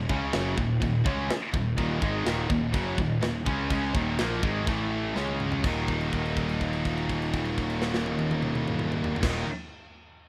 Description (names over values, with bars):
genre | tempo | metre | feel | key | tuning
heavy metal | 124 BPM | 4/4 | straight | Eb minor | A4 = 438 Hz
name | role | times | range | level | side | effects
distorted electric guitar | riff | 0.0-9.5 s | Eb2 to Db4 | -34 LUFS | equal | distortion
heavy high-gain guitar | riff | 0.0-9.5 s | Eb2 to Db4 | -34 LUFS | equal | distortion
heavy high-gain guitar | riff | 0.0-9.5 s | Eb2 to Eb4 | -36 LUFS | equal | distortion
fuzz picked electric bass | bass | 0.0-9.4 s | Eb1 to Db2 | -35 LUFS | equal | overdrive
tight metal drum kit | drums | 0.1-9.3 s | crash cymbal, kick drum, snare drum, toms | -34 LUFS | equal | none
room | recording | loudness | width
studio reverb | rough home demo mix | -28 LUFS | mono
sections
0.0-5.6 A section; 5.6-9.5 B section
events
drum fill 5.2-5.6; held note 5.6-9.2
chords
0.0 Ebm; 4.7 A5; 5.2 Db5; 5.6 Ebm